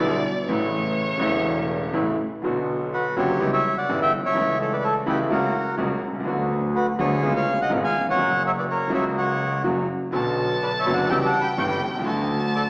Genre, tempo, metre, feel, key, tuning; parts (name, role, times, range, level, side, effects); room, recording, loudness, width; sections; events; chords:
tango; 125 BPM; 4/4; rubato; B minor; A4 = 435 Hz
clear violin; second line; 0.0-1.9, 10.1-12.7 s; C#5 to A5; -30 LUFS; equal
clear concert grand piano; accompaniment; 0.0-12.7 s; E1 to G4; -26 LUFS; equal
clear double bass; bass; 0.0-12.7 s; E1 to D2; -32 LUFS; equal
bandoneon; melody; 2.9-12.6 s; F#4 to C#6; -26 LUFS; equal
wet recital hall reverb, RT60 1.6 s; heard from further back in the room, small speaker sound; -23 LUFS; mono
0.0-2.4 A section; 2.4-12.7 B section
violin solo 0.0-2.4
0.5 A; 2.4 Bm; 3.4 C#dim; 4.4 A/C#; 5.3 F#/C#; 6.3 Bm/D; 7.2 C#7; 8.2 F#; 10.1 Bm; 11.1 C#dim; 12.1 D